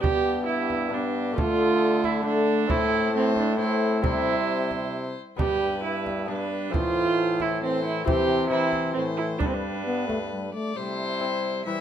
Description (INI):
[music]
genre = classical, renaissance-style consort dance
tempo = 134 BPM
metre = 3/4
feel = straight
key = G mixolydian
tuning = A4 = 439 Hz
[part]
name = rich violin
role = melody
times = 0.0-11.8 s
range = G4 to E5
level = -35 LUFS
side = left 4 dB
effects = none
[part]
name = warm viola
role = second line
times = 0.0-11.8 s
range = C4 to G4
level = -26 LUFS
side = right 5 dB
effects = none
[part]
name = lute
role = accompaniment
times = 0.0-11.8 s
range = G2 to E4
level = -31 LUFS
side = left 5 dB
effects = none
[part]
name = mellow trombone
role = accompaniment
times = 0.0-11.8 s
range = E3 to B3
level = -29 LUFS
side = left 2 dB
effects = none
[part]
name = brilliant trombone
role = bass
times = 0.0-11.8 s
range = G2 to E3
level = -31 LUFS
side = right 1 dB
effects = none
[part]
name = frame drum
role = percussion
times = 0.0-10.3 s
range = none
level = -29 LUFS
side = right 2 dB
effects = none
[sound]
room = wet stone room reverb, RT60 1.2 s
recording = none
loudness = -22 LUFS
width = side -9 dB against mid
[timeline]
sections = 0.0-10.8 A section; 10.8-11.8 B section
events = none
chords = 0.0 G; 1.4 Dm; 2.7 Am; 4.0 C; 5.4 G; 6.7 Am; 9.4 G; 10.8 C